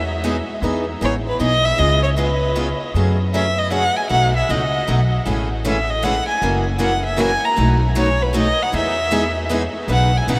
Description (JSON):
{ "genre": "acoustic string swing (jazz manouche)", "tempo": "155 BPM", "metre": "3/4", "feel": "swing 62% on 8ths", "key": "E major", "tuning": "A4 = 441 Hz", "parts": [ { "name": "warm violin", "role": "melody", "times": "0.0-10.4 s", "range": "B4 to A#5", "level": "-22 LUFS", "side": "equal", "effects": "none" }, { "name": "upright bass", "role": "bass", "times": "0.0-10.4 s", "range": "F#1 to F#2", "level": "-23 LUFS", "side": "equal", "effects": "none" }, { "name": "picked steel-string acoustic guitar", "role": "accompaniment", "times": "0.2-10.4 s", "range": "B2 to B4", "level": "-26 LUFS", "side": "equal", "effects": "none" }, { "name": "picked steel-string acoustic guitar", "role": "accompaniment", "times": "0.2-0.4, 5.3-10.4 s", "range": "B2 to B4", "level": "-30 LUFS", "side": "equal", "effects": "none" } ], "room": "wet huge ambient reverb, RT60 8.4 s", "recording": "in a vast, echoing space", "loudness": "-18 LUFS", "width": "mono", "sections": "0.6-9.9 A section", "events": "none", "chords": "0.0 Emaj7; 1.8 C#7; 2.9 F#madd9; 4.1 B7; 5.3 Amaj7; 6.4 F#7; 7.6 B7; 8.7 Emaj7" }